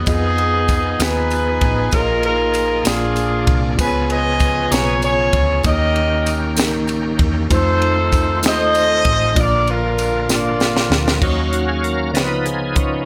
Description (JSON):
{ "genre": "slow gospel", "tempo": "65 BPM (dotted quarters)", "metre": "6/8", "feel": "straight", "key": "unclear", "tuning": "A4 = 440 Hz", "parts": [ { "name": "warm horn section", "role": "melody", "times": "0.0-11.2 s", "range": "Cb4 to Eb5", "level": "-20 LUFS", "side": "equal", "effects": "none" }, { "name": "mellow tine electric piano", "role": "accompaniment", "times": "0.0-13.1 s", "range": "Bb2 to Bb5", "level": "-25 LUFS", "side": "equal", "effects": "none" }, { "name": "bright tonewheel organ", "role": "sustained chords", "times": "0.0-13.1 s", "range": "D3 to F5", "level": "-28 LUFS", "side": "equal", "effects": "slow rotary speaker, overdrive, chorus vibrato" }, { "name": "hollow-body short-scale fingered electric bass", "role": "bass", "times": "0.0-13.0 s", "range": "Ab1 to F2", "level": "-25 LUFS", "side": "equal", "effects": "none" }, { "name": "crisp fusion drum kit", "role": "drums", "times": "0.1-12.9 s", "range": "crash cymbal, hi-hat, kick drum, ride cymbal, snare drum", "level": "-23 LUFS", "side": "equal", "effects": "none" }, { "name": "tambourine", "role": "percussion", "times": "0.1-10.9 s", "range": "none", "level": "-32 LUFS", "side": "equal", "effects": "none" } ], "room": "light reverb, small room ambience", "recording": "none", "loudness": "-17 LUFS", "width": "mono", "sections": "0.0-11.2 A section; 11.2-13.1 B section", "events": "drum fill 10.3-11.2; tonewheel organ solo 11.2-13.1", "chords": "0.1 Fm7b5; 1.9 Bb7sus4; 2.9 Bb7; 3.8 Db7; 5.6 Eb7; 7.5 F7; 9.4 Bb; 11.2 Ebm7; 12.2 Db9" }